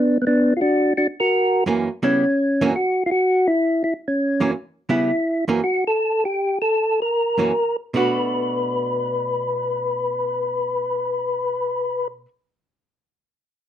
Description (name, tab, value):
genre	jazz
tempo	142-168 BPM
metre	4/4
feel	swing 65% on 8ths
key	B minor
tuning	A4 = 440 Hz
part	percussive tonewheel organ	melody	0.0-12.1 s	B3 to B4	-19 LUFS	left 1 dB	slow rotary speaker
part	archtop guitar, miked and amplified	accompaniment	1.7-12.3 s	F#2 to F#4	-23 LUFS	right 3 dB	none
room	moderate studio reverb, RT60 0.5 s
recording	dry, close 1970s-style studio recording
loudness	-19 LUFS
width	side -10 dB against mid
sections	0.0-2.0 A section; 2.0-7.9 B section; 7.9-11.3 C section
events	slowing down 4.9-7.9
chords	0.0 Bm; 1.3 F#7; 2.0 C#m7b5; 2.7 N.C.; 4.2 F#7; 4.9 C#m7b5; 5.6 N.C.; 7.1 F#7; 7.9 Bm7